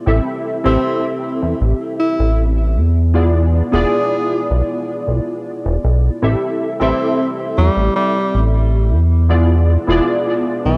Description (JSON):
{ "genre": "vaporwave", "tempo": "78 BPM", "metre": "4/4", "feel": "straight", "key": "A minor", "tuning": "A4 = 440 Hz", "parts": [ { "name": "warbly lo-fi synth keys", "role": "accompaniment", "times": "0.0-10.8 s", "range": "B3 to E5", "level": "-21 LUFS", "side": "equal", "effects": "ensemble chorus, vintage 12-bit sampler grit, tape echo" }, { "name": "chorused synth bass", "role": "bass", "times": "0.1-10.8 s", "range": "E1 to E2", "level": "-16 LUFS", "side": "equal", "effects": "none" }, { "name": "mellow alto saxophone", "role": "melody", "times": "0.7-10.8 s", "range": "E3 to G#4", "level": "-22 LUFS", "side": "equal", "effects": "tape echo" } ], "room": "light reverb, small room ambience", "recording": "cassette tape", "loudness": "-16 LUFS", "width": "mono", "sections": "0.0-10.8 A section", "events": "none", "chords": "0.1 Am7; 2.8 E7b9; 6.2 Am7; 8.9 E7b9", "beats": "| 0.07 0.84 1.61 2.38 | 3.15 3.92 4.69 5.46 | 6.23 7.00 7.76 8.53 | 9.30 10.07" }